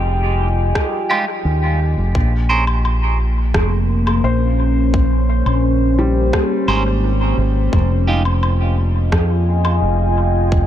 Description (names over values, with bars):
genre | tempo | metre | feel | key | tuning
ambient dub | 86 BPM | 4/4 | straight | F minor | A4 = 437 Hz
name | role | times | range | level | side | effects
deep dark ambient pad | sustained chords | 0.0-10.7 s | Bb3 to Ab5 | -21 LUFS | left 1 dB | chorus, built-in reverb
felt-muted upright piano | arpeggios | 0.0-8.1 s | G3 to C5 | -28 LUFS | left 1 dB | dub echo
fingered electric bass | bass | 0.0-10.7 s | F1 to F2 | -16 LUFS | equal | none
electronic kick drum | drums | 0.8-10.7 s | none | -19 LUFS | equal | overdrive
electronic rim click and woodblock | drums | 0.8-9.8 s | none | -26 LUFS | equal | overdrive, dub echo
clean electric guitar | stabs | 1.1-8.2 s | Ab3 to C5 | -24 LUFS | right 3 dB | phaser, dub echo
room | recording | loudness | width
light reverb | none | -14 LUFS | side -11 dB against mid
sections
0.0-10.7 A section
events
none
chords
0.0 Fm9; 2.2 Bbm9; 7.7 Fm9